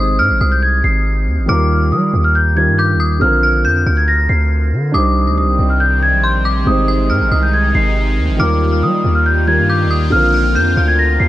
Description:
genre	hip hop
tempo	139 BPM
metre	4/4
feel	half-time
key	unclear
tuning	A4 = 440 Hz
part	large celesta	melody	0.0-11.3 s	D6 to C7	-16 LUFS	left 1 dB	low-pass filter
part	dark detuned synth bell	second line	0.0-11.3 s	C6 to G6	-24 LUFS	left 2 dB	chorus, ping-pong delay
part	dark grand piano	accompaniment	0.0-11.3 s	C3 to C5	-20 LUFS	right 1 dB	low-pass filter
part	long sustained 808-style bass	bass	0.0-11.3 s	Ab1 to G3	-15 LUFS	equal	none
part	sweeping resonant pad	sustained chords	4.9-11.3 s	C3 to F4	-22 LUFS	equal	chorus
room	studio ambience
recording	none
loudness	-12 LUFS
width	side -15 dB against mid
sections	0.0-11.3 A section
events	none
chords	0.0 Ab; 1.5 Ebadd9; 3.2 Bbadd9; 4.9 Cmadd9; 6.7 Ab; 8.4 Ebadd9; 10.1 Bbadd9

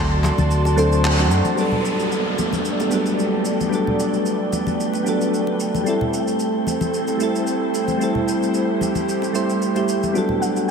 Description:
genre	sunset chillout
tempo	112 BPM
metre	4/4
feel	swing 54% on 16ths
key	G major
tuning	A4 = 440 Hz
part	soft electric-piano-like synth keys	accompaniment	0.0-10.7 s	F#3 to C5	-21 LUFS	equal	chorus, auto-pan, ping-pong delay, shimmer reverb, slapback echo
part	airy breathy pad	sustained chords	0.1-10.7 s	A3 to C6	-24 LUFS	right 2 dB	chorus, vintage 12-bit sampler grit, shimmer reverb
part	soft round pluck	arpeggios	0.0-1.5, 10.2-10.7 s	F#4 to C6	-27 LUFS	left 1 dB	wide subtle chorus, ping-pong delay, shimmer reverb, slapback echo
part	fretless electric bass	bass	0.0-1.4 s	D2 to F#2	-18 LUFS	equal	none
part	wind-like tuned noise texture	texture	0.1-10.7 s	G3 to A5	-30 LUFS	right 3 dB	built-in reverb, shimmer reverb
part	handclaps and shaker	drums	0.2-10.7 s	none	-30 LUFS	right 1 dB	none
part	congas and bongos	percussion	0.2-10.4 s	none	-28 LUFS	left 3 dB	none
part	downlifter	sound effects	1.6-5.9 s	none	-29 LUFS	right 2 dB	none
room	wet lush hall reverb, RT60 2.2 s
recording	big arena sound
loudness	-18 LUFS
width	side -6 dB against mid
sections	0.0-1.6 A section; 1.6-10.7 B section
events	band accent 1.0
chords	0.0 D7; 1.6 Gmaj9; 5.9 Am7; 10.1 Gmaj9

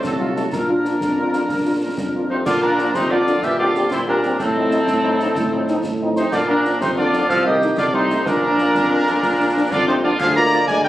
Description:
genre	military-style march for wind band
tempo	124 BPM (dotted quarters)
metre	6/8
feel	straight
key	Bb major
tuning	A4 = 442 Hz
part	mellow cornet	melody	0.0-10.9 s	F4 to Bb5	-23 LUFS	right 1 dB	none
part	clear woodwind section	second line	0.0-10.9 s	C4 to D5	-23 LUFS	left 1 dB	none
part	mellow hollow piccolo	second line	0.0-10.9 s	F5 to Bb6	-27 LUFS	left 2 dB	none
part	dark trombone section	sustained chords	0.0-10.6 s	F3 to Eb4	-26 LUFS	equal	none
part	warm tuba	bass	0.0-10.9 s	Bb1 to Bb2	-23 LUFS	right 1 dB	none
part	concert snare drum, concert bass drum and clash cymbals	drums	0.0-10.8 s	none	-30 LUFS	left 1 dB	none
part	warm French horn section	accompaniment	0.2-10.9 s	F3 to G4	-24 LUFS	left 2 dB	none
part	clear euphonium	second line	2.3-10.9 s	A2 to Bb3	-23 LUFS	right 2 dB	none
room	light reverb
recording	recorded on a phone in the room, studio reverb, compression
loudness	-16 LUFS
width	side -14 dB against mid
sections	0.0-2.5 A section; 2.5-10.9 B section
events	none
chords	0.0 F7b9; 0.5 Bb; 3.4 C5/Bb; 4.4 F7/A; 6.3 Bb; 7.3 Adim/C; 8.3 Bb; 10.2 Bb7/D

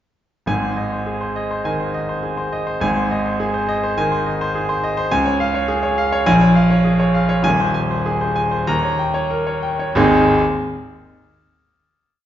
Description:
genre	classical, virtuoso piano study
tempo	92-106 BPM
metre	4/4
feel	rubato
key	Ab major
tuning	A4 = 440 Hz
part	bright grand piano	solo	0.5-10.4 s	Eb1 to Bb5	-16 LUFS	equal	none
room	wet recital hall reverb, RT60 1.3 s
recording	recorded in a church or concert hall, nothing above 7.5 kHz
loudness	-16 LUFS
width	side -11 dB against mid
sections	0.5-10.0 A section; 10.0-12.2 final chord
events	none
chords	0.5 Ab; 5.1 Db; 6.3 Bbm7; 7.5 Ab/Eb; 8.7 Eb7; 10.0 Ab

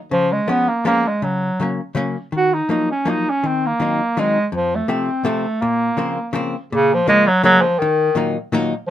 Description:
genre	musette waltz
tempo	165 BPM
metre	3/4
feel	swing 54% on 8ths, rubato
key	Bb minor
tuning	A4 = 440 Hz
part	clear bass clarinet	melody	0.1-8.9 s	Db3 to Gb4	-16 LUFS	right 1 dB	none
part	hollow-body jazz guitar	accompaniment	0.1-8.7 s	F2 to Eb4	-22 LUFS	left 3 dB	none
room	light reverb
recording	minimal, uncompressed stereo recording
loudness	-16 LUFS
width	side -11 dB against mid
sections	0.0-6.7 A section; 6.7-8.9 A section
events	none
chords	0.1 Db7; 1.2 Gb/Db; 2.3 Ebmadd9; 3.4 Cdim/Eb; 4.5 F; 5.6 Bbmadd9; 6.7 Bbm7; 7.8 Ebm

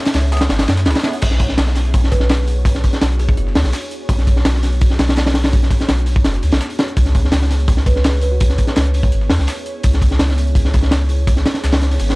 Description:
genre	drum and bass, jungle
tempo	167 BPM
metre	4/4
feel	straight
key	B dorian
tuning	A4 = 438 Hz
part	soft dub sub bass	bass	0.1-12.2 s	F#1 to F#2	-16 LUFS	equal	none
part	breakbeat sampler-style drum kit	drums	0.1-12.2 s	hi-hat, snare drum	-32 LUFS	equal	high-pass filter on hats, high-pass filter on snare
part	crunchy breakbeat drum kit	drums	0.1-12.2 s	crash cymbal, hi-hat, kick drum, snare drum	-16 LUFS	equal	none
part	filtered dub chord stab	stabs	0.3-1.1 s	B3 to G#4	-28 LUFS	right 2 dB	phaser, ensemble chorus, dub echo
part	kalimba	melody	2.1-3.6, 7.9-9.1 s	E4 to B4	-28 LUFS	right 2 dB	dub echo
part	swell	sound effects	12.1-12.2 s	none	-28 LUFS	right 3 dB	none
room	small room ambience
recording	dry, gritty hardware recording, cassette tape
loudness	-13 LUFS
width	side -24 dB against mid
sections	0.0-1.2 A section; 1.2-12.2 A section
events	drop 0.0-1.2, 1.2-12.2; swell 12.1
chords	0.0 C#m7; 1.2 Bm69; 7.0 C#m7

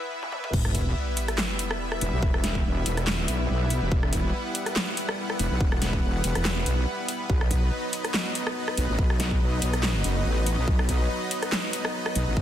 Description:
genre	heavy wobble dubstep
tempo	142 BPM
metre	4/4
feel	swing 54% on 16ths, half-time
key	E harmonic minor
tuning	A4 = 441 Hz
part	supersaw pad	sustained chords	0.0-12.4 s	E3 to F#5	-30 LUFS	equal	sidechain pumping
part	big-room dance drum kit	drums	0.2-12.2 s	crash cymbal, handclaps, hi-hat, rim click, snare drum, toms	-29 LUFS	equal	soft clipping on snare, high-pass filter on snare, high-pass filter on hats, high-pass filter on toms, high-pass filter on cymbals, high-pass filter on room
part	wobble bass	bass	0.5-12.4 s	E1 to B1	-26 LUFS	equal	chorus, overdrive
part	electronic kick drum	drums	0.5-12.4 s	none	-25 LUFS	equal	overdrive
part	sub drop	sound effects	0.5-2.2 s	none	-31 LUFS	equal	none
room	little or no reverb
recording	dense, heavily limited modern master, high-pass filter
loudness	-23 LUFS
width	side -11 dB against mid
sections	0.5-12.4 A section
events	break 0.0-0.5; drum fill 0.2-0.5; drop 0.5-12.4; impact 0.5-2.2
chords	0.0 E5; 0.5 Em; 7.3 B

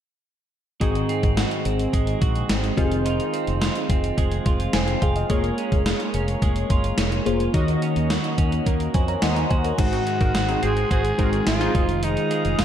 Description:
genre	1980s-style pop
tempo	107 BPM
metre	4/4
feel	straight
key	Ab mixolydian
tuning	A4 = 440 Hz
part	FM electric piano with soft pad layer	accompaniment	0.8-12.6 s	Ab2 to C6	-26 LUFS	left 2 dB	chorus
part	twelve-string electric guitar	riff	0.8-12.6 s	Eb3 to Gb4	-29 LUFS	right 5 dB	lush chorus, ping-pong delay
part	funky polysynth comp	stabs	0.8-11.8 s	C4 to Eb5	-31 LUFS	equal	chorus
part	mellow fretless electric bass	bass	0.8-12.6 s	F1 to F2	-25 LUFS	equal	wide subtle chorus
part	gated 80s digital drum machine	drums	0.8-12.6 s	crash cymbal, hi-hat, kick drum, snare drum	-23 LUFS	equal	gated reverb, gated reverb snare
part	growling alto saxophone	melody	9.8-12.6 s	Eb4 to Ab4	-25 LUFS	equal	none
part	chorused pulse-width pad	sustained chords	9.8-12.6 s	Ab4 to Eb6	-32 LUFS	left 2 dB	none
room	moderate digital room reverb, RT60 1.3 s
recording	dark, warm production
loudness	-19 LUFS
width	side -10 dB against mid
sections	0.8-9.8 A section; 9.8-12.6 B section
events	FM electric piano fill 8.9-9.8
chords	0.8 Ab7; 2.8 Fm7; 5.3 Bbm7/F; 7.5 Ebm7; 9.8 Ab7; 11.7 Fm7

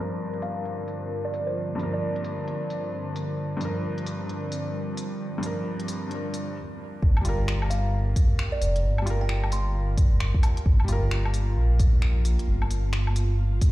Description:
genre	future garage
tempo	132 BPM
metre	4/4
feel	swing 62% on 16ths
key	G minor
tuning	A4 = 440 Hz
part	felt-muted upright piano	accompaniment	0.0-12.7 s	G2 to Bb4	-33 LUFS	equal	sidechain pumping, ping-pong delay
part	ethereal airy pad	sustained chords	0.0-13.7 s	G2 to Bb4	-35 LUFS	equal	ensemble chorus, built-in reverb, sidechain pumping
part	backwards swelling texture	texture	0.1-6.6 s	C4 to C5	-45 LUFS	right 1 dB	none
part	organic electronic drum kit	drums	0.3-13.7 s	finger snaps, hi-hat, woodblock	-35 LUFS	left 1 dB	none
part	kalimba	melody	0.4-2.2, 7.7-10.2 s	C5 to C6	-35 LUFS	right 1 dB	ping-pong delay
part	dark detuned saw bass	bass	7.0-13.6 s	F1 to Bb1	-23 LUFS	equal	tube saturation, sidechain pumping
part	electronic kick drum	drums	7.0-13.7 s	none	-20 LUFS	equal	none
room	digital ambience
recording	played on a big sound system in a bare room, large studio reverb, low-pass filter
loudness	-23 LUFS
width	side -17 dB against mid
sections	0.0-7.0 A section; 7.0-13.7 B section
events	filter sweep on ambient pad 0.0-7.0; filter sweep 0.0-7.0; stop 6.6-7.0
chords	0.0 Bb/G; 7.0 Gm7

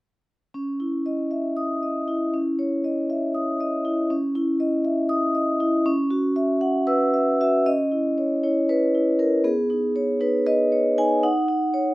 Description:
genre	classical, contemporary piece for solo vibraphone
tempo	236 BPM (eighths)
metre	7/8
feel	straight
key	C# minor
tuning	A4 = 441 Hz
part	vibraphone with soft mallets	solo	0.5-11.9 s	B3 to E6	-20 LUFS	equal	none
room	light reverb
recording	close, detailed microphones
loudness	-20 LUFS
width	side -19 dB against mid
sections	0.5-7.7 A section; 7.7-11.9 B section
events	none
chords	0.5 C#madd9; 5.9 Esus2/C#; 7.7 C#madd9; 9.5 Badd9; 11.2 D#m7

